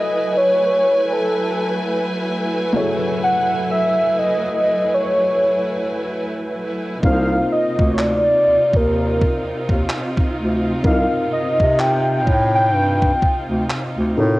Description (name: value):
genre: contemporary R&B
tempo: 63 BPM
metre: 4/4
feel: swing 58% on 16ths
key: unclear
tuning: A4 = 440 Hz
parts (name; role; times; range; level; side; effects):
- warm velvety synth lead; melody; 0.0-13.5 s; A4 to G5; -18 LUFS; equal; chorus, tape echo
- felt-muted upright piano; accompaniment; 0.0-14.4 s; C3 to G#5; -26 LUFS; left 1 dB; cassette tape
- warm studio string section; sustained chords; 0.0-14.4 s; C3 to G#5; -23 LUFS; equal; cassette tape
- warm bass clarinet; bass; 7.0-14.4 s; C2 to C3; -20 LUFS; equal; none
- crisp 8-bit digital drum machine; drums; 7.0-14.0 s; handclaps, kick drum; -19 LUFS; equal; cassette tape
room: light reverb, small room ambience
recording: home recording on cassette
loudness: -16 LUFS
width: side -18 dB against mid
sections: 0.0-14.4 A section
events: none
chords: 0.0 F#m11; 7.0 Cm11